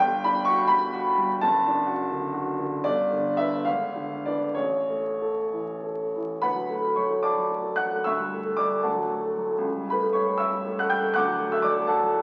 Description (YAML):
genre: classical, romantic character piece for solo piano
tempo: 62-90 BPM (dotted quarters)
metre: 6/8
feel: rubato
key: D major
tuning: A4 = 440 Hz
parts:
  - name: warm baby grand piano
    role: solo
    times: 0.0-12.2 s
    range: F#1 to G6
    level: -25 LUFS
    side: equal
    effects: none
room: wet recital hall reverb, RT60 1.7 s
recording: very old 78 rpm record, vinyl crackle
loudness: -25 LUFS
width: mono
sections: 0.0-6.4 A section; 6.4-12.2 B section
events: none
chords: 0.0 Gmaj7; 1.4 D/F#; 2.8 G; 3.6 G#dim7; 4.5 A; 6.4 D; 8.1 A7/D; 8.9 D; 9.6 A7/C#; 11.2 D